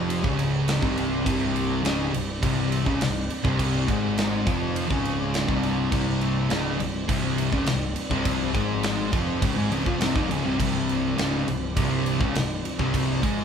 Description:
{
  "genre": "stoner and doom metal",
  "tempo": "103 BPM",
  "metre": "4/4",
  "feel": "straight",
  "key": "unclear",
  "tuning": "A4 = 440 Hz",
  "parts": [
    { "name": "soft string machine", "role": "sustained chords", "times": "0.0-13.4 s", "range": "F3 to D5", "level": "-35 LUFS", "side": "left 1 dB", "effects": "ensemble chorus" },
    { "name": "distorted electric guitar", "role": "riff", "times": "0.0-13.4 s", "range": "C2 to Ab3", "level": "-33 LUFS", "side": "right 1 dB", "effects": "overdrive" },
    { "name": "thick fuzz guitar", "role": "riff", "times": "0.0-13.4 s", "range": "C2 to Ab3", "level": "-27 LUFS", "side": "left 7 dB", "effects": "distortion" },
    { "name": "thick fuzz guitar", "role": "riff", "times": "0.0-13.4 s", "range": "C2 to Ab3", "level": "-28 LUFS", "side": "right 7 dB", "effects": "distortion" },
    { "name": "fuzz picked electric bass", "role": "bass", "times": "0.0-13.4 s", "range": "C1 to Ab1", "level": "-32 LUFS", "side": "equal", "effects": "overdrive" },
    { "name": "big rock drum kit", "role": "drums", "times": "0.1-13.4 s", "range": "crash cymbal, kick drum, snare drum", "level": "-28 LUFS", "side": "right 1 dB", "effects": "none" }
  ],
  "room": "light reverb",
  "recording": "band playing live in one room",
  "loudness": "-22 LUFS",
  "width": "side -7 dB against mid",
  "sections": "0.0-13.4 A section",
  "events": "none",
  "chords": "0.0 C5"
}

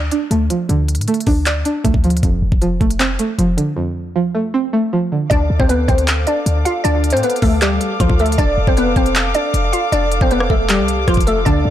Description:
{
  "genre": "hip hop, trap",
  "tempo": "156 BPM",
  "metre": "4/4",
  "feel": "half-time",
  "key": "D dorian",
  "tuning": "A4 = 443 Hz",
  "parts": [
    { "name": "string-like resonator pluck", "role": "accompaniment", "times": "0.0-5.3, 11.5-11.7 s", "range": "F2 to D5", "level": "-17 LUFS", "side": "right 2 dB", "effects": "chorus, low-pass filter" },
    { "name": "clean 808-style bass", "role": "bass", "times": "0.0-11.7 s", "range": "F1 to A2", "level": "-18 LUFS", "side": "equal", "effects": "none" },
    { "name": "trap drum kit", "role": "drums", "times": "0.1-11.6 s", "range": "handclaps, hi-hat, kick drum, rim click", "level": "-18 LUFS", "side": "equal", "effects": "none" },
    { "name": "glassy wavetable pluck", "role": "melody", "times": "5.3-11.7 s", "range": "F3 to F5", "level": "-17 LUFS", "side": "left 1 dB", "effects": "chorus, low-pass filter, ping-pong delay" },
    { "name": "dark chamber string section", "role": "sustained chords", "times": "5.3-11.7 s", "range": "A4 to D6", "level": "-24 LUFS", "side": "left 1 dB", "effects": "none" }
  ],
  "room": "light reverb, digital ambience",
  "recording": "blown-out, overdriven recording, overdrive",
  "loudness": "-14 LUFS",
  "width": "side -11 dB against mid",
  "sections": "0.0-5.3 A section; 5.3-11.7 B section",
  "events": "break 3.8-5.3",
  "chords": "0.0 Dm; 2.2 F6; 5.3 Dm; 8.4 F6"
}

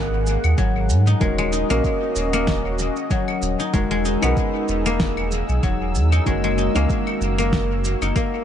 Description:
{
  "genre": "organic downtempo",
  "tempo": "95 BPM",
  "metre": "4/4",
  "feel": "swing 56% on 16ths",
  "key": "unclear",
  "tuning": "A4 = 441 Hz",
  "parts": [
    { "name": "felt-muted upright piano", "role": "accompaniment", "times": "0.0-8.4 s", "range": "D#3 to A#4", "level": "-29 LUFS", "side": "right 1 dB", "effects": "sidechain pumping, dub echo, shimmer reverb" },
    { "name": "warm analog pad", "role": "sustained chords", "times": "0.0-8.4 s", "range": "A#3 to E6", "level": "-29 LUFS", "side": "left 1 dB", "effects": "chorus, sidechain pumping, shimmer reverb" },
    { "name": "guzheng", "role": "arpeggios", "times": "0.0-8.4 s", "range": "F#3 to D#4", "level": "-23 LUFS", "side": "left 3 dB", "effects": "dub echo, shimmer reverb" },
    { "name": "warm sub bass", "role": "bass", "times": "0.0-8.1 s", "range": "D#1 to G#2", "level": "-21 LUFS", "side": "right 1 dB", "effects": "tube saturation, sidechain pumping" },
    { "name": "electronic shaker, claves and snare drum", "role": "drums", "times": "0.3-8.3 s", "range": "none", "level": "-28 LUFS", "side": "equal", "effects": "dub echo" },
    { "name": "electronic kick drum", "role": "drums", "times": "0.6-8.3 s", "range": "none", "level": "-24 LUFS", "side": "right 1 dB", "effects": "none" }
  ],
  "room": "light reverb",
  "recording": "echo-heavy mix, nothing above 10.7 kHz",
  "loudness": "-18 LUFS",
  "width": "side -9 dB against mid",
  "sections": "0.0-8.4 A section",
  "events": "none",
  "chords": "0.0 G#7(no3); 1.2 D#m7; 3.7 Emaj7; 6.3 F#7"
}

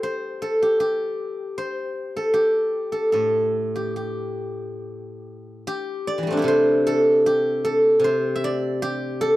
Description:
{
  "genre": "chinese traditional, Chinese solo plucked strings",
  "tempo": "76 BPM",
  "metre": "2/4",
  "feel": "rubato",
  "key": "G zhi mode",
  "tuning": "A4 = 439 Hz",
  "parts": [
    { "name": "steel-string zither", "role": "solo", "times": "0.0-9.4 s", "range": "A2 to E5", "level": "-20 LUFS", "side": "equal", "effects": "none" }
  ],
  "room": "little or no reverb",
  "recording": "dry, close 1970s-style studio recording",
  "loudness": "-20 LUFS",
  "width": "side -16 dB against mid",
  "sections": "0.0-4.8 A section; 4.8-9.4 B section",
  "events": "none",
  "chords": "none"
}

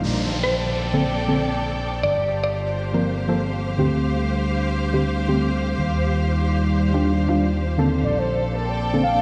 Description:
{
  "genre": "house",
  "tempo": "120 BPM",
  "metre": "4/4",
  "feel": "swing 61% on 16ths",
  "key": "Bb major",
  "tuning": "A4 = 440 Hz",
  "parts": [
    { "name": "warbly tape-like pad", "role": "sustained chords", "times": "0.0-9.2 s", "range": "G3 to D5", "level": "-32 LUFS", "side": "equal", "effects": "chorus, built-in reverb, vintage 12-bit sampler grit" },
    { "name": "fingered electric bass", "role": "bass", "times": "0.0-9.2 s", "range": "G1 to Eb2", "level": "-26 LUFS", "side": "equal", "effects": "low-pass filter" },
    { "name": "downlifter", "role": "sound effects", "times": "0.0-4.0 s", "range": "none", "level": "-35 LUFS", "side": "equal", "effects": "none" },
    { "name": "clear studio string section", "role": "texture", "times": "0.0-9.2 s", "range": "G4 to G5", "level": "-30 LUFS", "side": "equal", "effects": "none" },
    { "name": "mallet-like synth pluck", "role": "melody", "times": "0.4-2.8 s", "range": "C5 to D5", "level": "-27 LUFS", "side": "equal", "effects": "chorus, tape echo" },
    { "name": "deep mellow chord stab", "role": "stabs", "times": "0.9-9.0 s", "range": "D3 to Bb4", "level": "-26 LUFS", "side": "equal", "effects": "chorus, delay" },
    { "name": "warm velvety synth lead", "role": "melody", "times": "8.0-9.2 s", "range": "Bb4 to F5", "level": "-26 LUFS", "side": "equal", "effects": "chorus, vintage 12-bit sampler grit" }
  ],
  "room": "moderate lush hall reverb, RT60 2.7 s",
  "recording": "played on a big sound system in a bare room, large studio reverb",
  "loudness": "-22 LUFS",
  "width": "mono",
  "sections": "0.0-9.2 A section",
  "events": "none",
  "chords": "0.0 Bbmaj9; 2.0 Gm11; 3.8 D7sus4; 5.8 Ebmaj9; 8.0 Bbmaj9"
}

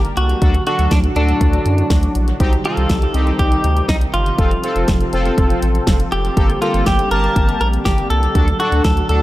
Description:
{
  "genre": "synth-pop",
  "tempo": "121 BPM",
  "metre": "4/4",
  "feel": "straight",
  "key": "G minor",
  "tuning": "A4 = 440 Hz",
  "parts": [
    { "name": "sweeping resonant pad", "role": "sustained chords", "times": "0.0-9.2 s", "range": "A2 to A4", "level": "-24 LUFS", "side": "equal", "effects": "chorus" },
    { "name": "round analog bass", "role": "bass", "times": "0.0-9.2 s", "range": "F1 to F#2", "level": "-18 LUFS", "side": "equal", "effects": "none" },
    { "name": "pop drum kit", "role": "drums", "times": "0.0-9.2 s", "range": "hi-hat, kick drum, snare drum", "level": "-18 LUFS", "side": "equal", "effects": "none" },
    { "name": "direct-recorded clean electric guitar", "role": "melody", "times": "0.2-9.2 s", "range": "D4 to Bb4", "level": "-21 LUFS", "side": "equal", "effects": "lush chorus, dub echo" },
    { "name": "analog synth brass", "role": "accompaniment", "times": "0.4-9.2 s", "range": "Bb3 to A5", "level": "-23 LUFS", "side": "left 1 dB", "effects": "chorus, dub echo" }
  ],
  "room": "light reverb, digital ambience",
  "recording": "echo-heavy mix",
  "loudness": "-13 LUFS",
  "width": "side -16 dB against mid",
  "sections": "0.0-9.2 A section",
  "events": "none",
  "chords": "0.4 D; 2.4 Cm; 4.4 F; 6.4 Gmadd9; 8.4 D"
}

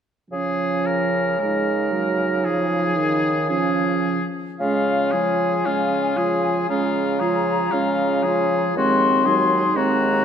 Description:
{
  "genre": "classical, slow romantic movement for wind quintet",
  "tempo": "52-61 BPM",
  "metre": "4/4",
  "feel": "rubato",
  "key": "Db major",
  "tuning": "A4 = 440 Hz",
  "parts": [
    { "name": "clear oboe", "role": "second line", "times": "0.3-10.2 s", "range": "F4 to Bb4", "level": "-25 LUFS", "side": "left 3 dB", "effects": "none" },
    { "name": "mellow clarinet", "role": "accompaniment", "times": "0.3-10.2 s", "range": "C4 to F4", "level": "-26 LUFS", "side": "right 7 dB", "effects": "none" },
    { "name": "warm French horn", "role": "accompaniment", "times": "0.3-10.2 s", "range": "Eb3 to Ab3", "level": "-26 LUFS", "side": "equal", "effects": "none" },
    { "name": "warm bassoon", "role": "bass", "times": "0.3-10.2 s", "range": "Eb2 to Db3", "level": "-23 LUFS", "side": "right 1 dB", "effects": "none" },
    { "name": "concert flute", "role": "melody", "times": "4.6-10.2 s", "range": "F5 to C6", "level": "-24 LUFS", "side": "left 6 dB", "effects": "none" }
  ],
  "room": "wet concert hall reverb, RT60 2.3 s",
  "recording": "none",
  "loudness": "-18 LUFS",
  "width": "side -8 dB against mid",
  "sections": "0.3-4.6 A section; 4.6-10.2 B section",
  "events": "none",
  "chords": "0.3 Db; 8.8 Ab7/Eb"
}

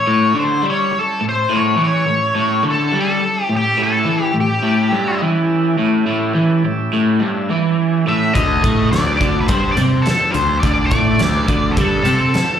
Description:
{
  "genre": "blues rock power trio and southern rock",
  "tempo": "105 BPM",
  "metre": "4/4",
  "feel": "straight",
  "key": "A mixolydian",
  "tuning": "A4 = 440 Hz",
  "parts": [
    { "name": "octave-fuzz lead guitar", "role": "melody", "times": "0.0-12.6 s", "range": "G4 to E5", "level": "-18 LUFS", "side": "left 1 dB", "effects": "wah, distortion, slapback echo" },
    { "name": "overdriven tonewheel organ", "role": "sustained chords", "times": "0.0-12.6 s", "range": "C4 to Bb4", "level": "-30 LUFS", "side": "right 3 dB", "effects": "slow rotary speaker" },
    { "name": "crunchy overdriven guitar", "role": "riff", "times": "0.1-12.4 s", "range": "G2 to C4", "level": "-17 LUFS", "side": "equal", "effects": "slapback echo" },
    { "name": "fuzz picked electric bass", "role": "bass", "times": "8.4-12.4 s", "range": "D2 to C3", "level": "-18 LUFS", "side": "equal", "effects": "overdrive" },
    { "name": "huge arena drum kit", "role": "drums", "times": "8.4-12.5 s", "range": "hi-hat, kick drum, snare drum", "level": "-20 LUFS", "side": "equal", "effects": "none" }
  ],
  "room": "light reverb, studio reverb",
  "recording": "live gig heard through the venue's PA, club reverb",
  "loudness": "-14 LUFS",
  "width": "side -8 dB against mid",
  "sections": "0.0-12.6 A section",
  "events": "none",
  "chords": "0.0 A7; 8.4 D7; 10.6 Dm7"
}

